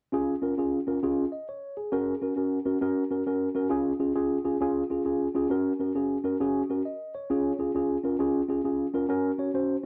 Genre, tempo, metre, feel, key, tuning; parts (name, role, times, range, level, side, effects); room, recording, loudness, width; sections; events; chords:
soul; 134 BPM; 4/4; swing 65% on 8ths; Db major; A4 = 442 Hz
mellow tine electric piano; solo; 0.1-9.8 s; Db4 to Eb5; -28 LUFS; equal; subtle chorus
moderate studio reverb, RT60 0.6 s; -28 LUFS; mono
0.1-9.9 A section
0.1 Db; 1.9 Gb; 3.7 Db; 5.5 Gb; 7.3 Db; 9.1 Gb